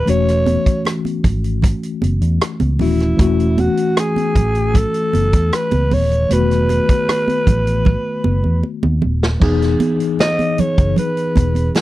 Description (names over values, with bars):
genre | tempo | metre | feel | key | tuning
lush 1970s-style soul | 77 BPM | 4/4 | straight | E major | A4 = 440 Hz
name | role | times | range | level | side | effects
breathy alto saxophone | melody | 0.0-11.7 s | E4 to D#5 | -19 LUFS | equal | none
mellow tine electric piano | accompaniment | 0.0-11.8 s | D#3 to G#4 | -20 LUFS | left 3 dB | slow stereo tremolo
vintage muted fingered electric bass | bass | 0.1-11.7 s | D#1 to E2 | -17 LUFS | equal | none
vintage drum kit | drums | 0.1-11.8 s | crash cymbal, hi-hat, kick drum, rim click, snare drum | -17 LUFS | equal | none
congas | percussion | 0.1-11.8 s | none | -22 LUFS | right 4 dB | none
room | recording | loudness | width
little or no reverb | dry, close 1970s-style studio recording | -14 LUFS | side -16 dB against mid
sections
0.0-9.4 A section; 9.4-11.8 B section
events
drum fill 7.9-9.4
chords
0.1 F#m7/E; 3.2 A6/E; 6.3 B7/E; 9.4 Emaj7